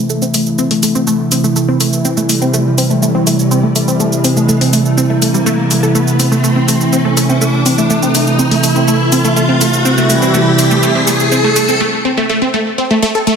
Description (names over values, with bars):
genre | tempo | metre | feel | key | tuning
melodic techno | 123 BPM | 4/4 | straight | unclear | A4 = 440 Hz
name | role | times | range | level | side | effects
warm analog pad | sustained chords | 0.0-11.8 s | C3 to E4 | -13 LUFS | right 1 dB | chorus
wide unison pluck | arpeggios | 0.0-13.3 s | G3 to A4 | -15 LUFS | equal | dub echo
riser | sound effects | 0.0-11.8 s | none | -18 LUFS | equal | none
electronic shaker and hi-hat | drums | 0.1-11.8 s | none | -18 LUFS | right 1 dB | high-pass filter on perc, small room ambience, high-pass filter on hats
room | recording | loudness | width
moderate lush hall reverb, RT60 2.1 s | dense, heavily limited modern master | -10 LUFS | side -6 dB against mid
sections
0.0-13.4 A section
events
build-up 0.0-13.4; filter sweep on synth pluck 0.0-13.4; filter sweep on analog synth pad 0.0-13.4; riser 0.0-11.8; break 11.8-13.4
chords
0.0 Am; 2.0 C; 6.0 Am; 9.9 C